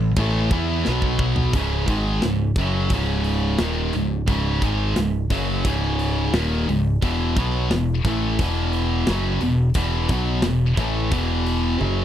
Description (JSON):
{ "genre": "heavy metal", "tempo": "88 BPM", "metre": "4/4", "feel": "straight", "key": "C# minor", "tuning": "A4 = 440 Hz", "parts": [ { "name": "high-gain distorted guitar", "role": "riff", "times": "0.0-12.0 s", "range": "C#2 to E4", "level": "-22 LUFS", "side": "equal", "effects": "distortion" }, { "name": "modern bright picked electric bass", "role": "bass", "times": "0.0-12.0 s", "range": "C#1 to E2", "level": "-24 LUFS", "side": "equal", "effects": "none" }, { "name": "tight metal drum kit", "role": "drums", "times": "0.2-12.0 s", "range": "crash cymbal, hi-hat, kick drum, snare drum, toms", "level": "-25 LUFS", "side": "equal", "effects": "none" } ], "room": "little or no reverb", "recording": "dry, close 1970s-style studio recording", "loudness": "-19 LUFS", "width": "side -10 dB against mid", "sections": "0.0-1.5 A section; 1.5-12.0 B section", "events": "drum fill 0.9-1.5, 11.8", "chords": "0.0 A5; 0.9 B5; 1.5 C#5; 7.0 E5" }